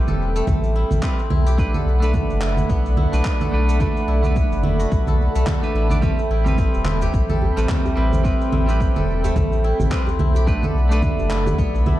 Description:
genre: organic downtempo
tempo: 108 BPM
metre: 4/4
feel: swing 58% on 16ths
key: A dorian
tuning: A4 = 440 Hz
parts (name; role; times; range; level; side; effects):
- clean electric guitar; accompaniment; 0.0-12.0 s; G3 to D5; -28 LUFS; right 3 dB; sidechain pumping, digital delay
- warm analog pad; sustained chords; 0.0-12.0 s; C4 to B5; -28 LUFS; equal; chorus, sidechain pumping
- steel-string zither; arpeggios; 0.0-12.0 s; A3 to A4; -27 LUFS; equal; digital delay
- warm sub bass; bass; 0.1-12.0 s; E1 to B1; -20 LUFS; equal; sidechain pumping
- electronic congas, shaker and handclaps; drums; 0.1-12.0 s; none; -26 LUFS; right 2 dB; none
- electronic kick drum; drums; 0.5-11.7 s; none; -23 LUFS; equal; overdrive
- djembe; percussion; 6.7-12.0 s; none; -30 LUFS; right 1 dB; none
room: light reverb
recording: dark, warm production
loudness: -17 LUFS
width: side -15 dB against mid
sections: 0.0-12.0 A section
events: none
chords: 0.0 Am9; 1.6 Bm7; 6.0 Am9; 10.5 Bm7

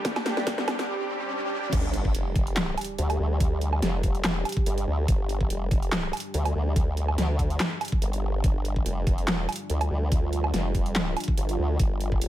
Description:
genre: heavy wobble dubstep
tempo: 143 BPM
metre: 4/4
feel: swing 54% on 16ths, half-time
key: unclear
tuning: A4 = 442 Hz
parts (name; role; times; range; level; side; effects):
- lush unison pad; sustained chords; 0.0-12.3 s; G3 to G4; -34 LUFS; right 2 dB; chorus, phaser, sidechain pumping
- dubstep drum kit; drums; 0.0-12.3 s; crash cymbal, handclaps, hi-hat, snare drum, woodblock; -29 LUFS; equal; overdrive
- electronic kick drum; drums; 0.0-12.2 s; none; -25 LUFS; equal; overdrive
- riser, swell and sub drop; sound effects; 0.0-3.4 s; none; -33 LUFS; equal; none
- formant-sweep wobble bass; bass; 1.7-12.3 s; F1 to D2; -27 LUFS; equal; chorus, overdrive
room: digital ambience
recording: high-pass filter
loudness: -24 LUFS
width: side -13 dB against mid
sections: 0.0-1.7 A section; 1.7-12.3 B section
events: build-up 0.0-1.7; drum fill 0.0-0.9; riser 0.0-1.7; break 0.9-1.7; swell 0.9-1.7; drop 1.7-12.3; impact 1.7-3.4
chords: 0.0 G5

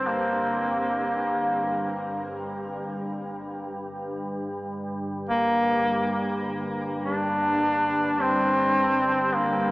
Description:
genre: dark ambient drone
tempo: free time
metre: none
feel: none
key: unclear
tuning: A4 = 445 Hz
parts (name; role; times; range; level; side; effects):
- clear duduk; melody; 0.0-9.7 s; Bb3 to D4; -24 LUFS; equal; shimmer reverb, diffuse ambient delay
- organ-like drone; drone; 0.0-9.7 s; G1 to G2; -30 LUFS; equal; ensemble chorus, built-in reverb
room: wet huge ambient reverb, RT60 8.1 s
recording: worn, warbling old tape, cassette tape, warbly pitch drift, small speaker sound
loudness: -23 LUFS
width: side -22 dB against mid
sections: 0.0-9.7 A section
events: filter sweep on synth drone 0.0-9.7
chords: none

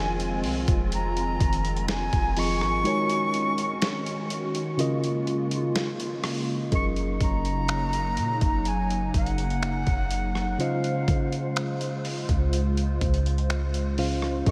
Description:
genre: contemporary R&B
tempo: 62 BPM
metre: 4/4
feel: straight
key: Db major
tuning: A4 = 440 Hz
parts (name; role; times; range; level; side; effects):
- jazz flute; melody; 0.0-14.5 s; F5 to Db6; -33 LUFS; equal; analog delay
- mellow tine electric piano; accompaniment; 0.0-14.5 s; Db3 to F5; -33 LUFS; equal; none
- hollow soft pad; sustained chords; 0.0-14.5 s; Db3 to C5; -34 LUFS; equal; ensemble chorus
- soft 808-style bass; bass; 0.0-14.5 s; F1 to Db3; -31 LUFS; equal; none
- dusty soul sampler-style drum kit; drums; 0.2-14.5 s; finger snaps, hi-hat, kick drum, rim click, snare drum; -32 LUFS; equal; none
room: wet huge ambient reverb, RT60 8.4 s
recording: dreamy mix soaked in reverb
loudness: -26 LUFS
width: mono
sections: 0.0-6.7 A section; 6.7-14.5 B section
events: kick muted 2.9-6.7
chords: 0.0 Fm7; 2.9 Ab7sus4; 4.8 Db6; 6.7 Gb6; 10.6 Dbmaj7

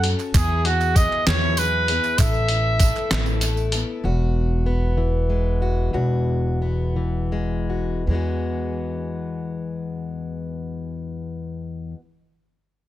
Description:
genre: indie folk with a building arrangement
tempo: 52-65 BPM (dotted quarters)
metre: 6/8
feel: straight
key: E major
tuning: A4 = 440 Hz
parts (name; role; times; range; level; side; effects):
- mellow trumpet; melody; 0.0-3.4 s; F#4 to E5; -22 LUFS; right 2 dB; none
- picked twelve-string acoustic guitar; accompaniment; 0.0-4.0 s; E3 to A4; -29 LUFS; left 6 dB; none
- upright bass; bass; 0.0-11.9 s; E1 to F#2; -23 LUFS; equal; none
- lo-fi sampler-style drum kit; drums; 0.0-3.9 s; hi-hat, kick drum, snare drum; -22 LUFS; equal; none
- group handclap; percussion; 0.2-3.5 s; none; -32 LUFS; right 7 dB; none
- tambourine; percussion; 0.2-3.8 s; none; -33 LUFS; right 13 dB; none
- fingerpicked plugged-in steel-string acoustic guitar; accompaniment; 4.0-12.0 s; E2 to F#4; -26 LUFS; left 3 dB; none
room: small room ambience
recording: dense, heavily limited modern master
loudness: -20 LUFS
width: side -14 dB against mid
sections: 0.0-4.0 A section; 4.0-8.1 B section; 8.1-12.7 C section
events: slowing down 4.0-8.1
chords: 0.3 Eadd9; 2.2 Asus2; 4.0 Eadd9

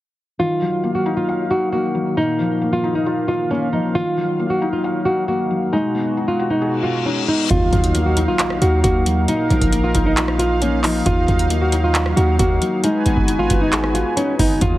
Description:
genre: hip hop, trap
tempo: 135 BPM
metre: 4/4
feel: half-time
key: Eb minor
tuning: A4 = 445 Hz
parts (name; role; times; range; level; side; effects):
- nylon-string guitar; melody; 0.4-14.8 s; Db4 to Gb4; -20 LUFS; equal; low-pass filter, digital delay
- felt-muted upright piano; accompaniment; 0.4-14.8 s; Bb2 to F5; -22 LUFS; left 3 dB; low-pass filter
- warm analog pad; sustained chords; 0.4-14.8 s; Cb3 to Eb6; -27 LUFS; right 2 dB; chorus
- reverse cymbal and impact; sound effects; 6.8-9.3 s; none; -27 LUFS; left 3 dB; none
- warm 808-style bass; bass; 7.5-14.8 s; Ab1 to Eb2; -19 LUFS; equal; none
- booming analog drum machine; drums; 7.5-14.8 s; handclaps, hi-hat, kick drum, rim click; -21 LUFS; equal; none
room: digital ambience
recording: heavily compressed radio sound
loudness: -16 LUFS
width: side -15 dB against mid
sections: 0.4-7.5 A section; 7.5-14.8 B section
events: reverse cymbal 6.8-7.5; impact 7.5-9.3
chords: 0.4 Ebmadd9; 2.2 Bbsus4; 3.9 Ebmadd9; 5.7 Abm7; 7.5 Ebmadd9; 9.3 Bbsus4; 11.1 Ebmadd9; 12.8 Abm7

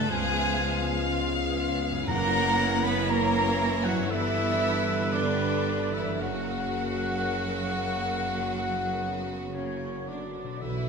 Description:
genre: classical, slow romantic movement for symphony orchestra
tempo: 53-62 BPM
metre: 4/4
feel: rubato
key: unclear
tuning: A4 = 440 Hz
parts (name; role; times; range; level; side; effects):
- dark chamber violin section; melody; 0.0-10.9 s; A#4 to F#5; -36 LUFS; left 5 dB; none
- clear chamber violin section; second line; 0.0-10.9 s; C#4 to B4; -34 LUFS; left 1 dB; none
- mellow clarinet; second line; 0.0-10.9 s; A#4 to C#5; -40 LUFS; left 4 dB; none
- small flute group; second line; 0.0-10.9 s; C#5 to B5; -36 LUFS; equal; none
- mellow bassoon; accompaniment; 0.0-10.9 s; C#3 to E#3; -37 LUFS; equal; none
- rich symphonic viola section; accompaniment; 0.0-10.6 s; A#3 to G#4; -37 LUFS; right 1 dB; none
- clear trombone section; sustained chords; 0.0-10.9 s; C#3 to G#3; -38 LUFS; right 4 dB; none
- warm French horn section; sustained chords; 0.0-10.9 s; A#3 to F#4; -36 LUFS; left 8 dB; none
- concert harp; arpeggios; 0.0-10.9 s; F#2 to D5; -40 LUFS; left 10 dB; none
- mellow trumpet section; stabs; 0.0-10.9 s; C#5 to B5; -34 LUFS; left 1 dB; none
- clear chamber double bass section; bass; 0.0-10.9 s; F#1 to C#2; -34 LUFS; right 5 dB; none
- rich symphonic cello section; bass; 0.0-10.9 s; C#3 to B3; -34 LUFS; right 4 dB; none
- warm oboe; second line; 0.1-10.9 s; C#5 to B5; -36 LUFS; equal; none
- timpani; percussion; 2.1-3.5 s; F#2; -37 LUFS; right 1 dB; none
room: wet recital hall reverb, RT60 1.4 s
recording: none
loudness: -25 LUFS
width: side -5 dB against mid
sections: 0.0-10.9 A section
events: none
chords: 0.1 C#7; 2.1 F#7; 4.1 G6; 6.2 F#

